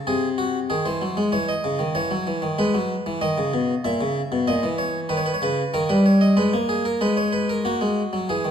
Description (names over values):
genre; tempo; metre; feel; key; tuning
classical, baroque-style two-part invention for harpsichord; 95 BPM; 4/4; straight; unclear; A4 = 440 Hz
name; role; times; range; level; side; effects
harpsichord; solo; 0.0-8.5 s; A#2 to E5; -20 LUFS; equal; none
room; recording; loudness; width
moderate recital hall reverb, RT60 1.6 s; dark, warm production; -20 LUFS; side -8 dB against mid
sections
0.0-7.6 A section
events
none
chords
0.1 G#7/B#; 1.3 C#m; 2.6 G#m; 3.8 A#dim; 5.1 D#7; 6.4 G#m; 7.6 F#7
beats
| 0.07 0.70 1.33 1.96 | 2.58 3.22 3.84 4.47 | 5.10 5.73 6.37 7.01 | 7.65 8.29